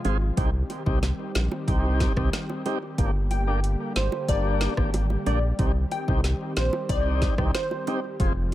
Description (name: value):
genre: dancehall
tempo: 92 BPM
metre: 4/4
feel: straight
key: C minor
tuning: A4 = 440 Hz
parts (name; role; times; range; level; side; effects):
- tonewheel organ; accompaniment; 0.0-8.3 s; Bb3 to Ab4; -31 LUFS; equal; overdrive, slow rotary speaker, sidechain pumping, tape echo
- warm analog pad; sustained chords; 0.0-8.5 s; C3 to G4; -34 LUFS; equal; chorus, sidechain pumping
- afro-pop drum kit; drums; 0.0-8.5 s; hi-hat, kick drum, rim click, snare drum; -26 LUFS; equal; none
- bongos; percussion; 0.0-8.0 s; none; -36 LUFS; right 4 dB; tape echo
- round analog bass; bass; 0.1-8.5 s; F1 to C2; -25 LUFS; equal; none
- glassy wavetable pluck; melody; 3.3-8.0 s; C5 to G5; -31 LUFS; left 1 dB; chorus, tape echo
room: little or no reverb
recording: echo-heavy mix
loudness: -23 LUFS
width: side -14 dB against mid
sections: 0.0-8.5 A section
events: none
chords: 0.4 Cm; 3.0 Gm; 5.6 Cm